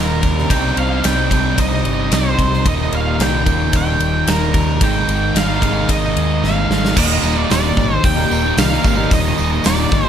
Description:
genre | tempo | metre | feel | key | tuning
rock, shoegaze and dream pop | 111 BPM | 4/4 | straight | Eb major | A4 = 438 Hz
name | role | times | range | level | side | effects
octave-fuzz lead guitar | melody | 0.0-10.1 s | Bb4 to G5 | -21 LUFS | right 2 dB | distortion, slapback echo
direct-recorded clean electric guitar | arpeggios | 0.0-10.1 s | Eb2 to Eb4 | -28 LUFS | left 8 dB | analog chorus, slapback echo
overdriven semi-hollow guitar | riff | 0.0-10.1 s | Eb2 to Eb4 | -21 LUFS | right 10 dB | reverse reverb
thick fuzz guitar | riff | 0.0-10.1 s | Eb2 to C4 | -21 LUFS | left 8 dB | distortion, ensemble chorus
vintage muted fingered electric bass | bass | 0.0-10.1 s | Eb1 to Eb2 | -21 LUFS | equal | none
gated 80s drum kit | drums | 0.2-10.0 s | crash cymbal, hi-hat, kick drum, ride cymbal, snare drum | -19 LUFS | equal | none
tambourine | percussion | 7.0-10.0 s | none | -32 LUFS | right 11 dB | none
room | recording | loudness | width
small room ambience | none | -13 LUFS | side -9 dB against mid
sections
0.0-7.0 A section; 7.0-10.1 B section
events
drum fill 6.4-7.0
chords
0.0 Eb; 0.5 Cmadd9; 2.7 Eb; 4.8 Absus2; 7.0 Ebmaj7

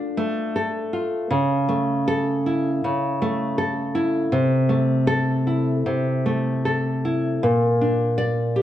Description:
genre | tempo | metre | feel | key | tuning
romantic piece for solo classical guitar | 75-82 BPM | 4/4 | rubato | unclear | A4 = 442 Hz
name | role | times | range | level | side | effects
nylon-string guitar | solo | 0.0-8.6 s | Bb2 to D5 | -20 LUFS | equal | none
room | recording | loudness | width
moderate recital hall reverb, RT60 1.7 s | worn, warbling old tape, cassette tape, warbly pitch drift | -20 LUFS | side -12 dB against mid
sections
0.0-8.6 A section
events
none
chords
0.0 Dm; 1.3 A/C#; 4.3 Am/C; 7.4 Gm/Bb (rootless)

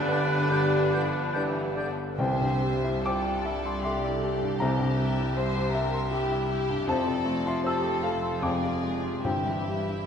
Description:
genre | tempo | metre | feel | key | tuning
classical, romantic movement for piano and orchestra | 77 BPM | 3/4 | uneven beats, rubato | C major | A4 = 439 Hz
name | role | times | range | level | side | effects
clear grand piano | melody | 0.0-10.1 s | G1 to E6 | -28 LUFS | left 2 dB | none
warm studio violin section | melody | 0.0-10.1 s | C5 to E5 | -40 LUFS | left 2 dB | none
clear studio violin section | second line | 0.0-10.0 s | B3 to C5 | -36 LUFS | left 3 dB | none
warm cor anglais | second line | 0.0-1.8 s | D4 | -34 LUFS | right 2 dB | none
dark chamber viola section | accompaniment | 0.0-10.1 s | D3 to A4 | -34 LUFS | right 2 dB | none
dark French horn section | sustained chords | 0.0-9.5 s | E3 to D4 | -38 LUFS | left 3 dB | none
warm trumpet section | stabs | 0.0-1.8 s | B4+20c | -32 LUFS | right 2 dB | none
dark studio cello section | bass | 0.0-10.1 s | C2 to D3 | -36 LUFS | right 1 dB | none
dark studio double bass section | bass | 0.0-10.1 s | F1 to C2 | -36 LUFS | right 4 dB | none
bright clarinet | second line | 0.1-1.9 s | D5 | -39 LUFS | equal | none
bright flute section | second line | 0.1-1.9 s | G6 | -38 LUFS | left 2 dB | none
clear bassoon | accompaniment | 0.1-1.9 s | B3 | -40 LUFS | right 2 dB | none
timpani | percussion | 2.2-10.1 s | G2 to C3 | -37 LUFS | equal | none
room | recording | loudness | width
wet concert hall reverb, RT60 1.9 s | nothing above 10.3 kHz | -24 LUFS | side -7 dB against mid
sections
0.0-2.2 A section; 2.2-10.1 B section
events
none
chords
0.0 G; 2.2 C; 4.6 C7; 6.9 F; 8.4 Dm7b5/F; 9.2 C/G

